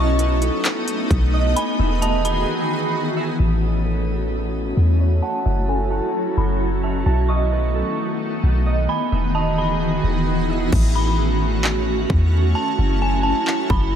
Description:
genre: hip hop, atmospheric cloud-rap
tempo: 131 BPM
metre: 4/4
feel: half-time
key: A lydian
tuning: A4 = 440 Hz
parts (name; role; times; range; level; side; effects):
- dark detuned synth bell; melody; 0.0-14.0 s; G#5 to C#6; -27 LUFS; equal; chorus, phaser, low-pass filter, tape echo
- shimmering ambient pad; sustained chords; 0.0-14.0 s; D#3 to A4; -22 LUFS; equal; chorus, built-in reverb, sidechain pumping, low-pass filter
- concert harp; arpeggios; 0.0-12.2 s; F#4 to A5; -29 LUFS; right 7 dB; low-pass filter, tape echo
- warm 808-style bass; bass; 0.0-14.0 s; E1 to E2; -19 LUFS; equal; none
- trap drum kit; drums; 0.2-2.4, 10.7-13.8 s; crash cymbal, handclaps, hi-hat, kick drum; -23 LUFS; equal; overdrive
room: light reverb, digital ambience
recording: none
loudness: -17 LUFS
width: side -9 dB against mid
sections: 0.0-3.4 A section; 3.4-10.7 B section; 10.7-14.0 C section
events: break 2.5-3.4; filter sweep 3.4-10.7; hi-hats muted 10.7-14.0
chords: 0.0 B7; 1.6 Emaj7; 3.4 A6; 5.2 F#m7; 7.1 B7; 8.9 Emaj7; 10.7 A6; 12.6 F#m7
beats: 0.19 0.65 1.11 | 1.56 2.02 2.48 2.94 | 3.40 3.85 4.31 4.77 | 5.23 5.69 6.14 6.60 | 7.06 7.52 7.98 8.43 | 8.89 9.35 9.81 10.27 | 10.72 11.18 11.64 12.10 | 12.56 13.01 13.47 13.93

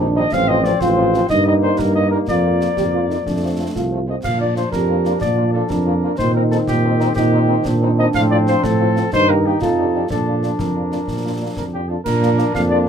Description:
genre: military-style march for wind band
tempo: 123 BPM (dotted quarters)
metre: 6/8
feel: straight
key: Bb major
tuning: A4 = 440 Hz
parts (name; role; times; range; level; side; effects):
- warm euphonium; second line; 0.0-12.9 s; Bb3 to G4; -21 LUFS; right 2 dB; none
- mellow French horn section; accompaniment; 0.0-12.8 s; F3 to G4; -24 LUFS; left 2 dB; none
- warm trombone section; sustained chords; 0.0-12.9 s; Eb3 to Eb4; -24 LUFS; left 3 dB; none
- mellow tuba; bass; 0.0-12.9 s; A1 to Bb2; -20 LUFS; right 2 dB; none
- dark cornet; melody; 0.2-12.8 s; G4 to F5; -22 LUFS; left 1 dB; none
- concert snare drum, clash cymbals and concert bass drum; drums; 0.3-12.7 s; none; -30 LUFS; left 1 dB; none
room: light reverb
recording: none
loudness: -15 LUFS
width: side -8 dB against mid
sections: 0.0-12.1 A section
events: none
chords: 0.3 F/A; 1.3 Eb/G; 2.3 Bb/F; 3.3 F; 4.2 Bb; 6.2 Cm7/Bb; 8.1 F/A; 9.1 Eb/G; 9.6 F13; 10.1 Bb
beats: | 0.32 0.81 | 1.30 1.79 | 2.28 2.77 | 3.26 3.75 | 4.24 4.72 | 5.21 5.70 | 6.19 6.68 | 7.17 7.66 | 8.15 8.63 | 9.12 9.61 | 10.10 10.59 | 11.08 11.57 | 12.06 12.55

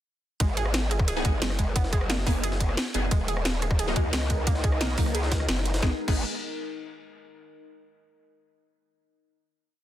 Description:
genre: dark technical drum and bass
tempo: 177 BPM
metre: 4/4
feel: straight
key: G# minor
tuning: A4 = 440 Hz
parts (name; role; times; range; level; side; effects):
- wide unison pluck; arpeggios; 0.4-6.2 s; G#3 to G#4; -35 LUFS; right 4 dB; cassette tape, sidechain pumping, dub echo
- growl bass; bass; 0.4-6.2 s; D#1 to D#2; -28 LUFS; equal; chorus, overdrive, sidechain pumping
- drum and bass drum kit; drums; 0.4-6.1 s; crash cymbal, hi-hat, rim click, snare drum; -31 LUFS; equal; overdrive
- electronic kick drum; drums; 0.4-6.1 s; none; -25 LUFS; equal; overdrive
- jungle sampler-style drum kit; drums; 0.4-5.8 s; ride cymbal, snare drum; -37 LUFS; equal; none
- orchestra-hit-like synth stab; stabs; 1.2-6.2 s; F#3 to G#4; -34 LUFS; equal; built-in reverb, dub echo
- dark analog pad; sustained chords; 3.8-6.0 s; D#4 to D#5; -37 LUFS; left 2 dB; chorus, phaser, sidechain pumping
room: little or no reverb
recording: dense, heavily limited modern master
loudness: -24 LUFS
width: side -12 dB against mid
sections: 0.4-5.8 drop; 5.8-7.2 final chord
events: drop 0.4-5.8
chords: 0.4 G#m; 3.1 D#m; 5.8 G#m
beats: | 0.40 0.74 1.08 1.42 | 1.76 2.10 2.44 2.77 | 3.11 3.45 3.79 4.13 | 4.47 4.81 5.15 5.49 | 5.83 6.16

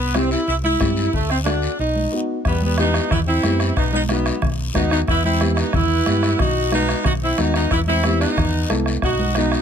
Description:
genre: latin, cumbia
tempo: 182 BPM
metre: 4/4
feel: straight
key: E harmonic minor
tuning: A4 = 439 Hz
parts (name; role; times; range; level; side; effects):
- warm saxophone section; melody; 0.0-9.6 s; F#3 to F#4; -21 LUFS; right 1 dB; none
- fingered electric bass; bass; 0.0-9.5 s; B1 to G2; -22 LUFS; equal; none
- dark upright piano; accompaniment; 0.1-9.6 s; A3 to A4; -26 LUFS; left 3 dB; none
- bombo; percussion; 0.1-9.6 s; none; -25 LUFS; equal; none
- congas; percussion; 0.1-9.5 s; none; -27 LUFS; right 4 dB; none
- guiro; percussion; 0.1-9.6 s; none; -33 LUFS; left 6 dB; none
room: little or no reverb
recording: close, detailed microphones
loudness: -17 LUFS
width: side -8 dB against mid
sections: 0.0-2.4 A section; 2.4-9.6 B section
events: break 2.1-2.4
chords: 0.0 C; 1.1 D; 1.8 B; 2.4 Em; 3.8 B; 5.1 Em; 6.4 B; 7.7 Em; 9.0 B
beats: 0.14 0.47 0.80 | 1.13 1.46 1.79 2.12 | 2.45 2.78 3.11 3.44 | 3.76 4.09 4.42 4.75 | 5.08 5.41 5.74 6.07 | 6.40 6.72 7.05 7.38 | 7.71 8.04 8.37 8.70 | 9.03 9.36

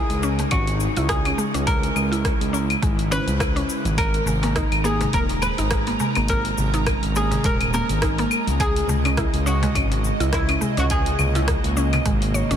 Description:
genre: organic downtempo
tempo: 104 BPM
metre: 4/4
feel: swing 57% on 16ths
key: unclear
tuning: A4 = 439 Hz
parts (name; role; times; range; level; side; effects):
- oud; melody; 0.0-12.6 s; E4 to B4; -26 LUFS; equal; ping-pong delay, shimmer reverb
- airy breathy pad; sustained chords; 0.1-12.6 s; C#3 to A#5; -28 LUFS; right 4 dB; chorus, sidechain pumping, shimmer reverb
- mallet-like synth pluck; arpeggios; 0.0-12.6 s; G#3 to C#5; -28 LUFS; equal; chorus, ping-pong delay, shimmer reverb
- smooth gliding synth bass; bass; 0.1-12.6 s; D#1 to C#2; -24 LUFS; equal; tube saturation, sidechain pumping
- deep house drum kit; drums; 0.1-12.6 s; cabasa, claves, hi-hat, rim click; -28 LUFS; left 2 dB; overdrive
- electronic kick drum; drums; 0.5-12.2 s; none; -25 LUFS; equal; overdrive
- darbuka; percussion; 4.3-12.3 s; none; -31 LUFS; left 2 dB; none
room: light reverb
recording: dense, heavily limited modern master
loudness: -19 LUFS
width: side -9 dB against mid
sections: 0.0-12.6 A section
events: none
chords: 0.0 C#m; 4.0 G#sus2; 8.6 C#m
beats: 0.52 1.09 | 1.67 2.25 2.83 3.40 | 3.98 4.56 5.13 5.71 | 6.29 6.87 7.44 8.02 | 8.60 9.17 9.75 10.33 | 10.90 11.48 12.06

